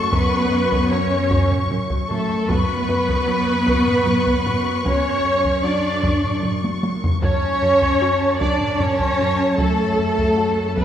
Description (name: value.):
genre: cinematic, suspense film score.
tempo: 76 BPM.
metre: 3/4.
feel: straight.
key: F# minor.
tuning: A4 = 440 Hz.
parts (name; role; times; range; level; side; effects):
warm symphonic violin section; melody; 0.0-10.8 s; A5 to C#6; -28 LUFS; left 4 dB; none.
rich symphonic violin section; second line; 0.0-10.8 s; A4 to D5; -25 LUFS; equal; none.
dark symphonic viola section; accompaniment; 0.0-10.8 s; A4 to D5; -23 LUFS; equal; none.
warm French horn section; sustained chords; 0.0-10.8 s; A3 to D4; -26 LUFS; left 3 dB; none.
warm symphonic cello section; bass; 0.0-10.8 s; A3 to D4; -26 LUFS; right 1 dB; none.
warm symphonic double bass section; bass; 0.0-10.8 s; F#2; -26 LUFS; equal; none.
vibraphone with soft mallets; texture; 0.0-10.8 s; C#5 to E6; -33 LUFS; right 2 dB; none.
plucky analog bass; riff; 0.1-10.8 s; F#2 to F#3; -26 LUFS; right 2 dB; none.
solo taiko drums; drums; 0.1-10.8 s; none; -25 LUFS; equal; none.
timpani; percussion; 2.5-3.6, 7.2-8.4 s; F#2; -34 LUFS; right 1 dB; none.
warm symphonic violin section; texture; 2.5-6.8 s; C#6 to F#6; -35 LUFS; left 4 dB; none.
room: wet concert hall reverb, RT60 2.1 s.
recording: heard from further back in the room.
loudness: -17 LUFS.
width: side -10 dB against mid.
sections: 0.0-10.8 A section.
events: drum fill 6.6-7.2.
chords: 0.0 F#m; 2.5 Bmadd9/F#; 7.2 F#m.